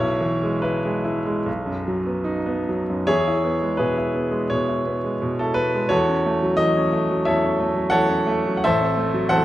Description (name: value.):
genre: classical, romantic character piece for solo piano.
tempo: 70-90 BPM.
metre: 4/4.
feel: rubato.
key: E major.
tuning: A4 = 441 Hz.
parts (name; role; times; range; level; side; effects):
clear baby grand piano; solo; 0.0-9.4 s; A1 to F#5; -19 LUFS; equal; none.
room: moderate recital hall reverb, RT60 1.3 s.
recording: none.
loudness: -19 LUFS.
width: side -14 dB against mid.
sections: 0.0-3.1 A section; 3.1-9.4 B section.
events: none.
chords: 0.0 E/B; 1.5 B; 3.1 E; 5.9 F#m7/E; 8.6 F#m7b5/A.